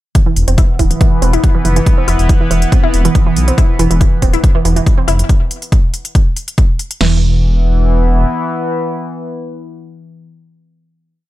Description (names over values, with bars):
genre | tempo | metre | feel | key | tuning
driving peak-time techno | 140 BPM | 4/4 | straight | unclear | A4 = 440 Hz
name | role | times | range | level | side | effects
analog pluck | riff | 0.1-7.2 s | E3 to E4 | -18 LUFS | right 3 dB | chorus, phaser, tube saturation, sidechain pumping, tape echo
electronic hi-hat | drums | 0.1-7.0 s | none | -24 LUFS | left 1 dB | sidechain pumping on hats, studio reverb
punchy analog drum machine | drums | 0.1-7.1 s | crash cymbal, kick drum, snare drum | -11 LUFS | equal | studio reverb
analog drone | drone | 0.2-10.3 s | E3 to B3 | -21 LUFS | left 1 dB | chorus, sidechain pumping
dark detuned saw bass | bass | 0.4-8.3 s | D1 to B1 | -12 LUFS | equal | sidechain pumping
room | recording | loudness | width
little or no reverb | none | -10 LUFS | side -16 dB against mid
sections
0.2-7.0 groove; 7.0-10.4 final chord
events
filter sweep on synth arpeggio sound 0.2-5.3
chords
0.2 E5